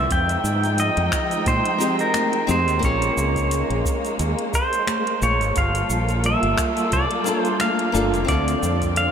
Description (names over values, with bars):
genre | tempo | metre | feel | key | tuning
sunset chillout | 88 BPM | 4/4 | swing 56% on 16ths | unclear | A4 = 439 Hz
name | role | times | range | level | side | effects
pedal steel guitar | melody | 0.0-9.1 s | Bb4 to G5 | -22 LUFS | right 1 dB | diffuse ambient delay
nylon-string guitar | accompaniment | 0.0-9.1 s | Bb3 to B4 | -27 LUFS | equal | auto-pan, diffuse ambient delay
dark studio string section | sustained chords | 0.0-9.1 s | D3 to G5 | -26 LUFS | equal | none
modern bright fingered electric bass | bass | 0.0-9.1 s | F1 to Bb2 | -23 LUFS | equal | none
electronic kick drum | drums | 0.1-8.9 s | none | -26 LUFS | equal | studio reverb
smooth R&B drum kit | drums | 0.1-9.1 s | finger snaps, hi-hat, shaker | -30 LUFS | equal | studio reverb
congas | percussion | 2.1-8.1 s | none | -35 LUFS | left 3 dB | none
room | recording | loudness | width
wet huge ambient reverb, RT60 8.5 s | dreamy mix soaked in reverb | -18 LUFS | side -7 dB against mid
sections
0.0-9.1 A section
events
none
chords
0.1 Fm9; 2.8 Bbm9; 5.6 Gm9; 8.3 Dm7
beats
| 0.10 0.79 1.47 2.15 | 2.83 3.51 4.20 4.88 | 5.56 6.24 6.92 7.61 | 8.29 8.97